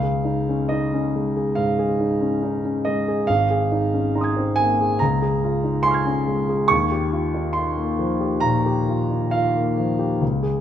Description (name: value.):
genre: classical, impressionist solo piano.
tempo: 66-71 BPM.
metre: 4/4.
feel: rubato.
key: unclear.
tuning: A4 = 438 Hz.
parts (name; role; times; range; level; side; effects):
warm concert grand piano; solo; 0.0-10.6 s; Ab1 to Ab6; -19 LUFS; equal; none.
room: moderate recital hall reverb, RT60 1.7 s.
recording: nothing above 10.9 kHz.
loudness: -19 LUFS.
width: side -10 dB against mid.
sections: 0.0-10.6 A section.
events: none.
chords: 0.0 Dbadd9; 3.3 Ab69; 5.0 Dbmaj7; 6.7 Eb9.